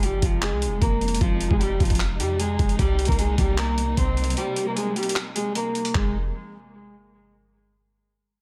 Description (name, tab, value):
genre	hip hop, trap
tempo	152 BPM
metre	4/4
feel	half-time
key	F minor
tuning	A4 = 435 Hz
part	electric guitar at the edge of break-up	melody	0.0-6.1 s	F3 to C5	-29 LUFS	equal	spring reverb, low-pass filter
part	dark symphonic string section	sustained chords	0.0-6.1 s	C3 to Eb4	-36 LUFS	equal	none
part	warm 808-style bass	bass	0.0-6.3 s	F1 to F2	-28 LUFS	equal	none
part	boom bap sampler-style drum kit	drums	0.0-6.0 s	handclaps, hi-hat, kick drum	-27 LUFS	equal	none
room	little or no reverb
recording	faint mains hum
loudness	-23 LUFS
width	mono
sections	0.0-5.9 A section; 5.9-7.5 B section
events	break 4.4-5.9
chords	0.0 Fm7; 2.8 Cm7; 5.9 Fm7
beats	0.03 0.42 0.82 | 1.21 1.60 2.00 2.40 | 2.79 3.18 3.58 3.97 | 4.37 4.76 5.16 5.55 | 5.95